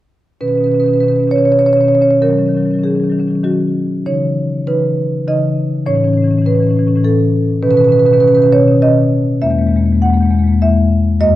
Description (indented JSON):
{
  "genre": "classical, contemporary piece for solo marimba",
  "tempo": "100 BPM",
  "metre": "3/4",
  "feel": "rubato",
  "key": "B major",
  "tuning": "A4 = 440 Hz",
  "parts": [
    { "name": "marimba with medium mallets", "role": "solo", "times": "0.4-11.4 s", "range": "E2 to F#5", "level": "-11 LUFS", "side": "equal", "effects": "none" }
  ],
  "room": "wet recital hall reverb, RT60 1.7 s",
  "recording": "worn, warbling old tape, cassette tape, warbly pitch drift",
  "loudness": "-11 LUFS",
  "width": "side -14 dB against mid",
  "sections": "0.4-11.4 A section",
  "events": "none",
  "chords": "0.4 Badd9; 2.2 D#m7; 4.1 C#m9; 5.9 A; 7.6 Badd9; 9.4 E",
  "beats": "| 0.41 1.02 1.62 | 2.23 2.83 3.44 | 4.06 4.67 5.27 | 5.86 6.46 7.04 | 7.63 8.23 8.83 | 9.43 10.02 10.62 | 11.21"
}